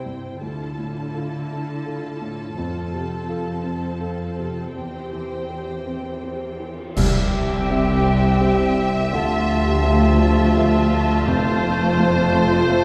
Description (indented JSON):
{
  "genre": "cinematic, emotional film score for orchestra",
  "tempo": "83 BPM",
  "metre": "3/4",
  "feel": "rubato",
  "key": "unclear",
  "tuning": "A4 = 438 Hz",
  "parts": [
    { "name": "warm symphonic violin section", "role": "second line", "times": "0.0-12.8 s", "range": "F4 to A5", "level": "-33 LUFS", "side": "equal", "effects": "none" },
    { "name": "warm grand piano", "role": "accompaniment", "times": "0.0-12.8 s", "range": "F1 to E5", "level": "-29 LUFS", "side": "equal", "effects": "none" },
    { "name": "warm symphonic viola section", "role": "accompaniment", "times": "0.0-12.8 s", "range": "A3 to G4", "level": "-31 LUFS", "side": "equal", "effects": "none" },
    { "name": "dark symphonic cello section", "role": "bass", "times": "0.0-12.8 s", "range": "C2 to D3", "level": "-27 LUFS", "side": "equal", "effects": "none" },
    { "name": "cymbal swell, clash cymbals and concert bass drum", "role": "percussion", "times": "2.6-8.4 s", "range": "none", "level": "-30 LUFS", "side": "equal", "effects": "none" },
    { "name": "rich studio violin section", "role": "melody", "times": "7.0-12.8 s", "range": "C5 to E5", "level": "-30 LUFS", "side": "equal", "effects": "none" },
    { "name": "flute section", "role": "second line", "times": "7.0-12.8 s", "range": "G5 to A5", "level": "-30 LUFS", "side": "equal", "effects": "none" },
    { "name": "warm clarinet", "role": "second line", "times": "7.0-12.8 s", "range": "F4 to G4", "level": "-33 LUFS", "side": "equal", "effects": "none" },
    { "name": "warm oboe", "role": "second line", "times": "7.0-12.8 s", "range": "C5 to E5", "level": "-33 LUFS", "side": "equal", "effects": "none" },
    { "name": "mellow French horn section", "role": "sustained chords", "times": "7.0-12.8 s", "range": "F3 to G4", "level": "-28 LUFS", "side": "equal", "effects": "none" },
    { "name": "warm symphonic double bass section", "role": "bass", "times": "7.0-12.8 s", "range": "F1 to D2", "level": "-25 LUFS", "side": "equal", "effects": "none" },
    { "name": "timpani", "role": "percussion", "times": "7.0-8.0, 11.3-12.3 s", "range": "F2 to C3", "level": "-32 LUFS", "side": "equal", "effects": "none" }
  ],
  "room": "wet scoring stage reverb, RT60 2.0 s",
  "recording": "heard from further back in the room",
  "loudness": "-21 LUFS",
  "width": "mono",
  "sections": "0.0-7.0 A section; 7.0-12.8 B section",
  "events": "band accent 7.0-7.7",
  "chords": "0.4 Dmadd9; 2.6 F; 4.7 C/E; 7.0 C; 9.1 Dmadd9; 11.3 F",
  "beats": "| 0.42 1.14 1.86 | 2.57 3.29 4.01 | 4.75 5.49 6.23 | 6.97 7.69 8.42 | 9.14 9.85 10.56 | 11.27 11.98 12.69"
}